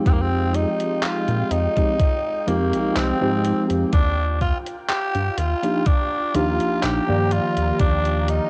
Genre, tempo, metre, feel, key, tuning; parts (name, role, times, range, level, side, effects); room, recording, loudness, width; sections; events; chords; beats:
vaporwave; 62 BPM; 4/4; straight; Eb major; A4 = 441 Hz
mellow tine electric piano; accompaniment; 0.0-8.5 s; Eb3 to D5; -25 LUFS; equal; ensemble chorus, cassette tape
soft string machine; sustained chords; 0.0-8.5 s; Ab3 to Bb5; -36 LUFS; equal; phaser, ensemble chorus, cassette tape
breathy tenor saxophone; melody; 0.1-8.5 s; Bb3 to G4; -27 LUFS; equal; cassette tape, tape echo
chorused synth bass; bass; 0.1-8.4 s; Bb1 to Bb2; -26 LUFS; equal
detuned 8-bit digital drum machine; drums; 0.1-8.5 s; handclaps, hi-hat; -31 LUFS; equal; vintage 12-bit sampler grit, studio reverb, cassette tape
electronic kick drum; drums; 0.1-8.0 s; -22 LUFS; equal; vintage 12-bit sampler grit, studio reverb, cassette tape
light reverb, digital ambience; home recording on cassette; -21 LUFS; mono
0.0-8.5 A section
0.0 Fm9; 3.9 Ebmaj9
| 0.06 1.02 1.99 2.96 | 3.93 4.89 5.86 6.83 | 7.80